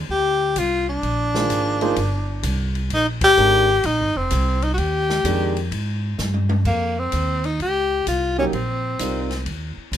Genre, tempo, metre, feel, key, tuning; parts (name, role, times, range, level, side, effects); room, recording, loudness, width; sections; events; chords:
modal jazz; 128 BPM; 4/4; swing 67% on 8ths; A4 = 438 Hz
upright bass; bass; 0.0-10.0 s; F1 to Ab2; -24 LUFS; equal
clear tenor saxophone; melody; 0.1-9.4 s; Bb3 to G4; -20 LUFS; left 2 dB
open jazz drum kit; drums; 0.6-10.0 s; crash cymbal, hi-hat, kick drum, ride cymbal, snare drum, toms; -30 LUFS; left 3 dB
warm concert grand piano; accompaniment; 1.3-5.5, 8.4-9.3 s; Eb3 to C5; -24 LUFS; right 4 dB
little or no reverb; minimal, uncompressed stereo recording; -18 LUFS; side -10 dB against mid
0.0-6.7 A section; 6.7-10.0 B section
band accent 3.1; drum fill 6.2-6.7
0.0 Bb13sus4; 6.7 F9sus4